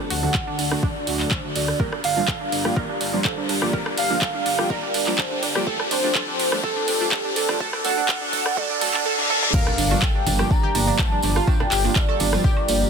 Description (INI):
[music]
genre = progressive house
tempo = 124 BPM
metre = 4/4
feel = straight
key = G minor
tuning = A4 = 440 Hz
[part]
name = lush unison pad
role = sustained chords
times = 0.0-12.9 s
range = D3 to Bb4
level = -32 LUFS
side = left 1 dB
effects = chorus, sidechain pumping
[part]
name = analog pluck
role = arpeggios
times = 0.0-12.9 s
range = D4 to Bb4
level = -28 LUFS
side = right 4 dB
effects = chorus, sidechain pumping, ping-pong delay
[part]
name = riser, reverse cymbal and impact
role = sound effects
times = 0.0-11.5 s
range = none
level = -29 LUFS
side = left 1 dB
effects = none
[part]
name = warm velvety synth lead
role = melody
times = 0.1-12.9 s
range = G4 to Bb5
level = -26 LUFS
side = equal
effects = chorus, sidechain pumping, ping-pong delay
[part]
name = dark detuned saw bass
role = bass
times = 0.1-12.8 s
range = F1 to D2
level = -27 LUFS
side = equal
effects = sidechain pumping
[part]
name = house drum kit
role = drums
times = 0.1-12.8 s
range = crash cymbal, handclaps, hi-hat, rim click, toms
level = -25 LUFS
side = right 1 dB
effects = high-pass filter on snare, small room reverb, high-pass filter on hats, high-pass filter on toms, high-pass filter on cymbals
[part]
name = chorused polysynth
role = stabs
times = 0.2-12.9 s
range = F#2 to G4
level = -30 LUFS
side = right 3 dB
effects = cassette tape, sidechain pumping, ping-pong delay
[part]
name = electronic kick drum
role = drums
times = 0.3-12.5 s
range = none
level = -23 LUFS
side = equal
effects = overdrive, small room reverb
[part]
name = tambourine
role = percussion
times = 9.5-12.9 s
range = none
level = -34 LUFS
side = right 2 dB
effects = none
[part]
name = congas and woodblock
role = percussion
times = 9.7-12.7 s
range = none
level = -34 LUFS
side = right 3 dB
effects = sidechain pumping on perc
[sound]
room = light reverb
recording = dense, heavily limited modern master, high-pass filter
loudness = -19 LUFS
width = side -6 dB against mid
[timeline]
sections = 0.0-9.5 A section; 9.5-12.9 B section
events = build-up 0.0-9.5; riser 0.0-9.5; filter sweep on synth pluck 0.0-9.5; filter sweep 0.0-9.5; reverse cymbal 8.6-9.5; drum fill 9.2-9.5; drop 9.5-12.9; impact 9.5-11.5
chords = 0.0 D; 1.8 Gm7; 5.7 Fadd9; 7.6 D; 9.5 Gm7